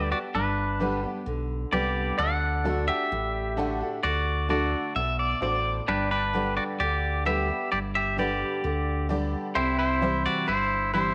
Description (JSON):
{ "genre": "honky-tonk and classic country", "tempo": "130 BPM", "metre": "4/4", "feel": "straight", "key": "G major", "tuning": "A4 = 439 Hz", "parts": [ { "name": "twangy electric guitar", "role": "melody", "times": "0.0-11.1 s", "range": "D4 to F#5", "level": "-29 LUFS", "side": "equal", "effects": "tape echo" }, { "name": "honky-tonk upright piano", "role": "accompaniment", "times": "0.0-11.1 s", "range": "D4 to B5", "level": "-38 LUFS", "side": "equal", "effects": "none" }, { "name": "picked steel-string acoustic guitar", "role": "accompaniment", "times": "0.0-11.1 s", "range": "G2 to G4", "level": "-34 LUFS", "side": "equal", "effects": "none" }, { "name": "pedal steel guitar", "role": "sustained chords", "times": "0.0-11.1 s", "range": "D5 to G5", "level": "-40 LUFS", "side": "equal", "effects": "lush chorus" }, { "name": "sub bass with octave", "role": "bass", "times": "0.0-11.1 s", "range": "G1 to D2", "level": "-33 LUFS", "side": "equal", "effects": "none" }, { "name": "pedal steel guitar", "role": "second line", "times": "5.0-5.8 s", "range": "D5 to E5", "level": "-30 LUFS", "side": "equal", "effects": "none" } ], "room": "moderate echo chamber reverb, RT60 1.7 s, small room ambience", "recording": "none", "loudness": "-27 LUFS", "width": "mono", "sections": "0.0-11.1 A section", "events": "none", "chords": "0.0 G; 2.2 D; 5.9 G; 9.6 C", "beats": "| 0.34 0.81 1.27 1.73 | 2.19 2.65 3.11 3.57 | 4.04 4.50 4.96 5.42 | 5.88 6.34 6.80 7.26 | 7.72 8.18 8.64 9.10 | 9.56 10.02 10.48 10.94" }